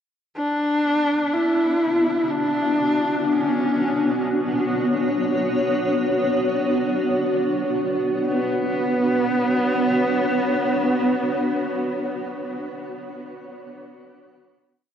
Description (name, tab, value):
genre	dark ambient drone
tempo	free time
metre	none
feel	none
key	B minor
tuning	A4 = 441 Hz
part	clear horsehead fiddle	melody	0.4-11.8 s	B3 to E4	-23 LUFS	equal	shimmer reverb, tape echo
part	granular cloud pad	sustained chords	1.4-12.2 s	B3 to C#5	-22 LUFS	equal	built-in reverb, shimmer reverb
room	wet huge ambient reverb, RT60 7.7 s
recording	worn, warbling old tape, cassette tape, warbly pitch drift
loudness	-19 LUFS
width	side -8 dB against mid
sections	0.4-8.2 A section; 8.2-12.2 final chord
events	none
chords	0.4 Bmadd9